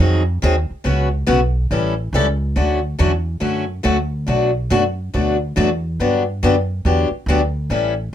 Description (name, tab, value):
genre	acoustic string swing (jazz manouche)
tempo	140 BPM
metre	4/4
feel	swing 64% on 8ths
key	D major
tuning	A4 = 441 Hz
part	picked steel-string acoustic guitar	accompaniment	0.0-7.9 s	B2 to A4	-18 LUFS	left 2 dB	none
part	upright bass	bass	0.0-8.1 s	A1 to G2	-19 LUFS	right 1 dB	none
room	little or no reverb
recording	close, detailed microphones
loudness	-16 LUFS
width	side -10 dB against mid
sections	0.0-2.6 A section; 2.6-8.1 A section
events	none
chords	0.0 G#7; 0.9 C#7sus4; 1.7 A7; 2.6 Dmaj7; 4.3 Bm7; 6.0 Gmaj7